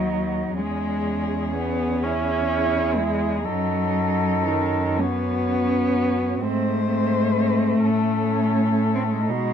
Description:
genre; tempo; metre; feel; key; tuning
classical, lyrical piece for cello ensemble; 42 BPM (dotted quarters); 6/8; rubato; C# minor; A4 = 441 Hz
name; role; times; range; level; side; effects
muted cello; melody; 0.0-9.5 s; F#4 to B#4; -28 LUFS; left 10 dB; none
muted cello; second line; 0.0-9.5 s; B#3 to E4; -27 LUFS; right 11 dB; none
muted cello; accompaniment; 0.0-9.5 s; D#3 to C#4; -23 LUFS; left 3 dB; none
muted cello; bass; 0.0-9.5 s; D#2 to B2; -26 LUFS; right 3 dB; none
room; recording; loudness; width
little or no reverb; close, detailed microphones; -20 LUFS; side -8 dB against mid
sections
0.0-9.5 A section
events
none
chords
0.0 D#m; 0.6 C#m/E; 3.5 D#m7b5/F#; 6.4 G#; 7.8 A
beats
| 0.59 2.04 | 3.46 5.00 | 6.42 7.84 | 9.29

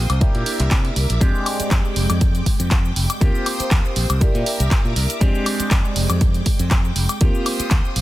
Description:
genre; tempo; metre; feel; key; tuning
filtered disco house; 120 BPM; 4/4; swing 54% on 16ths; F dorian; A4 = 441 Hz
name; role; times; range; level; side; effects
warm grand piano; accompaniment; 0.0-8.0 s; Ab3 to G4; -26 LUFS; equal; phaser, sidechain pumping
string machine, full ensemble; sustained chords; 0.0-8.0 s; Ab3 to Eb6; -28 LUFS; right 1 dB; ensemble chorus, sidechain pumping
modern bright fingered electric bass; bass; 0.0-8.0 s; F1 to C3; -21 LUFS; equal; sidechain pumping
punchy analog drum machine; drums; 0.1-8.0 s; handclaps, hi-hat, shaker, woodblock; -24 LUFS; equal; sidechain pumping on hats, sidechain pumping on perc
electronic kick drum; drums; 0.2-7.8 s; none; -17 LUFS; equal; none
room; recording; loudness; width
little or no reverb; dense, heavily limited modern master; -16 LUFS; side -16 dB against mid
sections
0.0-8.0 A section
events
none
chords
0.2 C9; 1.2 Fm69; 3.2 Eb6; 4.2 C9; 5.2 Fm69; 7.2 Eb6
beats
0.21 0.71 | 1.21 1.71 2.21 2.71 | 3.21 3.71 4.21 4.71 | 5.21 5.71 6.21 6.71 | 7.21 7.71

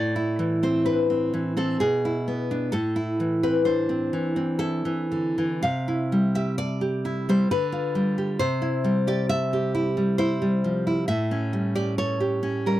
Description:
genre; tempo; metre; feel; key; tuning
romantic piece for solo classical guitar; 56-68 BPM; 3/4; rubato; A minor; A4 = 440 Hz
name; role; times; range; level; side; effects
nylon-string guitar; solo; 0.0-12.8 s; A2 to F5; -22 LUFS; equal; none
room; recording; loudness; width
light reverb; dry, close 1970s-style studio recording; -22 LUFS; side -14 dB against mid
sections
0.0-12.8 A section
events
none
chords
0.0 Am; 1.8 E7/B; 2.7 Am; 5.6 C; 7.5 G7/D; 8.4 C; 11.1 A7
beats
0.86 1.80 | 2.72 3.66 4.60 | 5.62 6.57 7.49 | 8.39 9.29 10.19 | 11.08 11.97

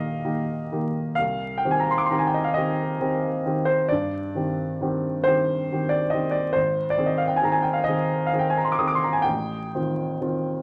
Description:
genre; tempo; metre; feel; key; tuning
classical, romantic nocturne for solo piano; 40-47 BPM (dotted quarters); 12/8; rubato; unclear; A4 = 440 Hz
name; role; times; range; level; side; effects
warm baby grand piano; solo; 0.0-10.6 s; Ab1 to Eb6; -24 LUFS; equal; none
room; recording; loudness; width
moderate large studio reverb, RT60 1.2 s; vinyl crackle; -24 LUFS; mono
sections
0.0-10.6 A section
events
none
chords
0.0 Eb; 1.2 Cm; 6.6 Ab; 9.3 F7/A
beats
| 1.18 2.55 3.91 5.27 | 6.56 7.88 9.27

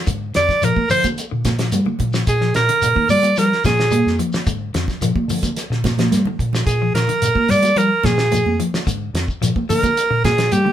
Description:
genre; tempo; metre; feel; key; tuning
afrobeat; 109 BPM; 4/4; straight; Bb mixolydian; A4 = 440 Hz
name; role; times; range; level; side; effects
clean electric guitar; arpeggios; 0.1-10.7 s; D3 to G3; -26 LUFS; left 8 dB; spring reverb
fingered electric bass; bass; 0.1-10.7 s; F2 to G3; -21 LUFS; equal; none
cloth-damped thuddy drum kit; drums; 0.1-10.7 s; hi-hat, kick drum, snare drum; -23 LUFS; equal; none
congas; percussion; 0.1-10.7 s; none; -24 LUFS; right 4 dB; none
shekere; percussion; 0.1-10.7 s; none; -27 LUFS; left 2 dB; none
edgy alto saxophone; melody; 0.4-10.7 s; G4 to D5; -16 LUFS; right 2 dB; none
room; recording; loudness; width
moderate studio reverb, RT60 0.5 s; band playing live in one room; -15 LUFS; side -11 dB against mid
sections
0.0-10.7 A section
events
alto saxophone solo 0.0-10.7; drum fill 6.0-6.7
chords
0.0 Bb6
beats
| 0.07 0.62 1.17 1.72 | 2.27 2.82 3.37 3.92 | 4.47 5.01 5.57 6.12 | 6.67 7.22 7.77 8.32 | 8.87 9.42 9.97 10.52

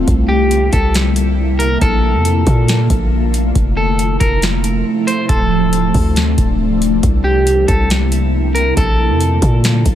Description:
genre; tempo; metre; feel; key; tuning
hip hop, atmospheric cloud-rap; 138 BPM; 4/4; half-time; unclear; A4 = 440 Hz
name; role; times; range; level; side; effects
ethereal airy pad; sustained chords; 0.0-9.9 s; C3 to F4; -18 LUFS; left 1 dB; ensemble chorus, built-in reverb, phaser, sidechain pumping
warm 808-style bass; bass; 0.0-9.9 s; D1 to Bb2; -15 LUFS; equal; none
booming analog drum machine; drums; 0.1-9.9 s; hi-hat, kick drum, snare drum; -16 LUFS; equal; none
electric guitar at the edge of break-up; melody; 0.3-9.9 s; G4 to C5; -19 LUFS; equal; spring reverb, digital delay
room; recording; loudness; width
little or no reverb; none; -12 LUFS; side -11 dB against mid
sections
0.0-9.9 A section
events
none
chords
0.1 C7; 1.8 Bbmaj7; 3.6 Fmaj7; 5.3 Dm7; 7.0 C7; 8.8 Bbmaj7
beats
| 0.08 0.51 0.94 1.38 | 1.81 2.25 2.68 3.12 | 3.55 3.99 4.42 4.86 | 5.29 5.73 6.16 6.60 | 7.03 7.47 7.90 8.34 | 8.77 9.21 9.64

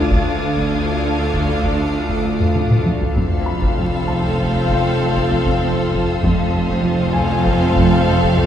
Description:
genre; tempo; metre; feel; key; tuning
cinematic, suspense film score; 98 BPM; 5/4; straight; unclear; A4 = 439 Hz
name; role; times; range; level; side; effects
rich studio violin section; melody; 0.0-8.5 s; F5; -26 LUFS; left 3 dB; none
rich studio violin section; second line; 0.0-8.5 s; A4; -29 LUFS; right 1 dB; none
warm studio viola section; accompaniment; 0.0-8.5 s; C4 to D4; -25 LUFS; equal; none
icy glass pad; sustained chords; 0.0-8.5 s; D4 to F5; -29 LUFS; equal; chorus, built-in reverb, tremolo
warm French horn section; sustained chords; 0.0-8.5 s; A3 to F4; -26 LUFS; left 3 dB; none
rich studio cello section; bass; 0.0-8.5 s; D2 to F2; -24 LUFS; right 1 dB; none
rich studio double bass section; bass; 0.0-8.5 s; F1 to D2; -23 LUFS; right 2 dB; none
bowed-like drone; drone; 0.0-8.5 s; D2 to F2; -26 LUFS; equal; none
felt-muted upright piano; texture; 0.0-8.5 s; G#5 to B5; -29 LUFS; left 2 dB; none
rich studio violin section; texture; 0.0-8.5 s; A5 to A6; -32 LUFS; left 1 dB; none
rich studio cello section; riff; 0.1-8.5 s; F2 to D4; -25 LUFS; right 2 dB; none
taiko ensemble; drums; 0.1-8.5 s; none; -22 LUFS; equal; none
room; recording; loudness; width
wet scoring stage reverb, RT60 1.9 s; heard from further back in the room, vinyl crackle; -15 LUFS; side -10 dB against mid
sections
0.0-8.5 A section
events
drum fill 2.4-3.2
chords
0.0 Dm; 3.2 F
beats
| 0.10 0.71 1.33 1.94 2.55 | 3.16 3.77 4.39 5.00 5.61 | 6.22 6.84 7.45 8.06

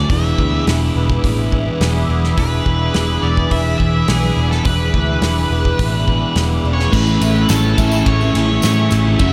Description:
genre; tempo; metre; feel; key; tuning
rock, shoegaze and dream pop; 105 BPM; 4/4; straight; A major; A4 = 436 Hz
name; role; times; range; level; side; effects
octave-fuzz lead guitar; melody; 0.0-9.3 s; G#4 to E5; -25 LUFS; equal; distortion, tape echo
phased analog pad; sustained chords; 0.0-9.3 s; G#4 to D6; -29 LUFS; equal; phaser, chorus
picked twelve-string acoustic guitar; arpeggios; 0.0-9.3 s; E3 to G#4; -31 LUFS; equal; analog chorus, tape echo
electric guitar through a small old amp; riff; 0.0-9.3 s; E3 to A4; -24 LUFS; equal; reverse reverb
thick fuzz guitar; riff; 0.0-9.3 s; E2 to D4; -24 LUFS; equal; distortion, subtle chorus
vintage muted picked electric bass; bass; 0.0-9.3 s; E1 to A2; -20 LUFS; equal; none
loose indie drum kit; drums; 0.1-9.3 s; crash cymbal, hi-hat, kick drum, ride cymbal, snare drum; -23 LUFS; equal; none
overdriven electric guitar; riff; 6.9-9.3 s; A2 to F#4; -25 LUFS; equal; none
tambourine; percussion; 7.1-9.0 s; none; -33 LUFS; equal; none
room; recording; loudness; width
moderate plate reverb, RT60 2.8 s; dreamy mix soaked in reverb; -16 LUFS; mono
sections
0.0-6.9 A section; 6.9-9.3 B section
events
none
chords
0.1 E7; 6.9 Amaj7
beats
| 0.10 0.67 1.24 1.81 | 2.38 2.96 3.52 4.09 | 4.66 5.23 5.80 6.37 | 6.94 7.50 8.07 8.64 | 9.20

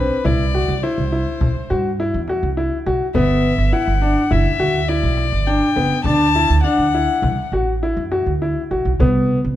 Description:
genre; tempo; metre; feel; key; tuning
contemporary instrumental, chamber music in an uneven meter; 103 BPM; 5/4; straight; unclear; A4 = 444 Hz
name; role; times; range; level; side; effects
warm violin; melody; 0.0-7.5 s; B4 to A5; -21 LUFS; left 6 dB; none
clear baby grand piano; arpeggios; 0.0-9.4 s; B3 to F#4; -20 LUFS; left 1 dB; none
upright bass; bass; 0.0-9.6 s; F#1 to G2; -20 LUFS; right 2 dB; none
frame drum; percussion; 0.3-9.3 s; none; -25 LUFS; left 3 dB; none
room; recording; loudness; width
moderate concert hall reverb, RT60 1.9 s; dark, warm production; -16 LUFS; side -13 dB against mid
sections
0.0-9.6 A section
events
none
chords
0.0 C; 3.1 Gmaj7; 6.0 D; 9.0 Cmaj7(no3)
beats
| 0.25 0.82 1.41 1.99 2.57 | 3.15 3.73 4.31 4.89 5.47 | 6.05 6.63 7.22 7.81 8.40 | 8.99

